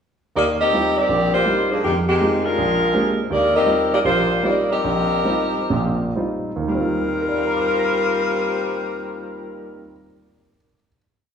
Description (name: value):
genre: jazz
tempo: 114-163 BPM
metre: 4/4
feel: swing 66% on 8ths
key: Eb major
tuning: A4 = 439 Hz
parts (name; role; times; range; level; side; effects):
- dark saxophone section; melody; 0.4-9.9 s; Eb3 to Eb5; -19 LUFS; left 1 dB; none
- warm grand piano; accompaniment; 0.4-11.0 s; Bb1 to Bb6; -23 LUFS; right 2 dB; none
room: wet recital hall reverb, RT60 1.3 s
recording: recorded in a church or concert hall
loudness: -17 LUFS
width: side -7 dB against mid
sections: 0.3-6.7 A section; 6.7-10.9 final chord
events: slowing down 3.3-6.7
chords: 0.3 Eb69; 1.8 Fm9; 2.6 Bb13; 3.3 Eb69